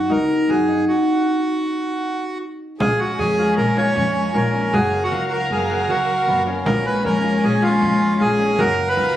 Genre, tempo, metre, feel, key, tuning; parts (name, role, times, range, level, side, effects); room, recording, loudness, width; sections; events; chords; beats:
contemporary instrumental, chamber music in an uneven meter; 156 BPM; 5/4; straight; A4 = 443 Hz
accordion; melody; 0.0-9.2 s; F4 to Db5; -20 LUFS; right 2 dB
concert harp; arpeggios; 0.0-9.2 s; Cb4 to Gb4; -23 LUFS; left 2 dB
upright bass; bass; 0.0-9.2 s; Gb1 to Gb2; -24 LUFS; equal
warm chamber string section; sustained chords; 2.8-9.2 s; Gb3 to F5; -22 LUFS; left 2 dB
frame drum; percussion; 2.8-8.8 s; -25 LUFS; equal
light reverb; recorded on a phone in the room, studio reverb, compression; -16 LUFS; side -12 dB against mid
0.0-2.8 A section; 2.8-9.2 B section
stop 0.9-2.8
0.0 Gb6; 0.9 N.C.; 2.8 Bbm7; 4.7 Gbmaj7; 6.7 Bbm7; 8.6 Gbmaj7
0.10 0.49 | 0.88 1.26 1.65 2.04 2.42 | 2.81 3.19 3.58 3.96 4.35 | 4.74 5.12 5.51 5.89 6.28 | 6.67 7.05 7.44 7.82 8.21 | 8.59 8.98